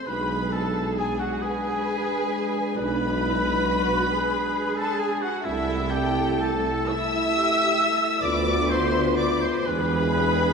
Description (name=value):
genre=classical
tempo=40-46 BPM (dotted quarters)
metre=12/8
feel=rubato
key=unclear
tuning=A4 = 440 Hz
part: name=muted studio violin section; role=melody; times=0.0-10.5 s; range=E5 to E6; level=-30 LUFS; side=left 4 dB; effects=none
part: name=muted studio violin section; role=second line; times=0.0-10.5 s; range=E4 to E5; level=-33 LUFS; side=left 1 dB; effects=none
part: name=warm oboe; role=second line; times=0.0-10.5 s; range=E4 to E5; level=-31 LUFS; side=right 2 dB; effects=none
part: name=muted studio viola section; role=accompaniment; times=0.0-10.5 s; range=E4 to E5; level=-30 LUFS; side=right 1 dB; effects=none
part: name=dark French horn section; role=sustained chords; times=0.0-10.5 s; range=G#3 to F4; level=-29 LUFS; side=left 3 dB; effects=none
part: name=muted studio cello section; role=bass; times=0.0-10.5 s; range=D4 to B4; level=-32 LUFS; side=right 2 dB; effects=none
part: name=mellow concert flute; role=second line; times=0.1-10.5 s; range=E5 to E6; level=-32 LUFS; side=left 1 dB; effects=none
part: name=clear tuba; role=bass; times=0.1-10.5 s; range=E1 to D2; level=-31 LUFS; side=right 4 dB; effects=none
part: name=muted symphonic double bass section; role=bass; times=0.1-10.5 s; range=B1 to E2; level=-30 LUFS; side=right 3 dB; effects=none
room=wet concert hall reverb, RT60 2.5 s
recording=lossy compression artefacts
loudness=-21 LUFS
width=side -5 dB against mid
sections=0.0-10.5 A section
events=none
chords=0.1 G#dim/B; 5.5 Am/C; 8.2 Bdim/D; 9.7 E7